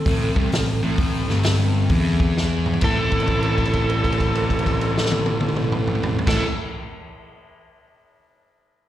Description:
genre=blues rock power trio and southern rock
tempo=131 BPM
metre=4/4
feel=swing 65% on 8ths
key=A minor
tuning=A4 = 445 Hz
part: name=smooth overdriven lead guitar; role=melody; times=0.0-6.4 s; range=A4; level=-26 LUFS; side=equal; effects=slapback echo
part: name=dark smooth lead guitar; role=second line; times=0.0-6.4 s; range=C4 to E4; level=-30 LUFS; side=equal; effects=overdrive, slapback echo
part: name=fuzz guitar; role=riff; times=0.1-6.5 s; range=G2 to E4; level=-25 LUFS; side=equal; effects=distortion
part: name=fuzz picked electric bass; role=bass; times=0.1-6.4 s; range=G1 to E2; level=-23 LUFS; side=equal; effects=overdrive
part: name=vintage drum kit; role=drums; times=0.1-6.4 s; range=crash cymbal, hi-hat, kick drum, snare drum, toms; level=-24 LUFS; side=equal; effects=none
room=small room ambience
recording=live gig heard through the venue's PA, recital hall reverb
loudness=-18 LUFS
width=side -12 dB against mid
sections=0.0-2.8 A section; 2.8-6.5 B section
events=drum fill 2.4-2.8; held note 2.8-6.2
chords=0.0 Am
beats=0.07 0.53 | 0.99 1.45 1.91 2.37 | 2.83 3.29 3.74 4.20 | 4.66 5.12 5.58 6.04

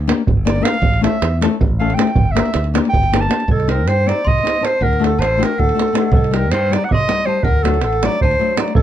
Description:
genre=balkan folk, Balkan wedding band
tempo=317 BPM (eighths)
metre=7/8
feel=straight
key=G dorian sharp4, C dorian sharp4 from 3.5 s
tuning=A4 = 440 Hz
part: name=modern bright fingered electric bass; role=bass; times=0.0-8.8 s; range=G1 to G2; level=-19 LUFS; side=equal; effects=none
part: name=flamenco guitar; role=accompaniment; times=0.1-8.7 s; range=F#3 to C5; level=-20 LUFS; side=left 7 dB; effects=none
part: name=davul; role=percussion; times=0.1-8.8 s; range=none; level=-18 LUFS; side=right 3 dB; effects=none
part: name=warm clarinet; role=melody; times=0.5-8.8 s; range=G4 to A5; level=-19 LUFS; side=right 2 dB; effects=plate reverb
part: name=worn celesta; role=second line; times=3.5-8.8 s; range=Eb5 to D6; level=-26 LUFS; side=left 2 dB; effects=none
room=light reverb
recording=dark, warm production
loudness=-14 LUFS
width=side -11 dB against mid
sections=0.0-3.5 A section; 3.5-8.8 B section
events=clarinet solo 0.0-3.5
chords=0.0 Gm; 0.8 A; 2.2 Gm; 3.5 Cm; 4.8 D; 6.1 Cm; 7.4 D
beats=0.05 0.24 0.44 0.63 | 0.82 1.01 1.20 1.39 1.58 1.77 1.96 | 2.15 2.34 2.53 2.72 2.91 3.10 3.29 | 3.48 3.67 3.86 4.05 4.24 4.43 4.62 | 4.81 5.00 5.19 5.38 5.56 5.75 5.94 | 6.13 6.32 6.51 6.69 6.88 7.07 7.26 | 7.45 7.63 7.82 8.01 8.20 8.38 8.57 | 8.76

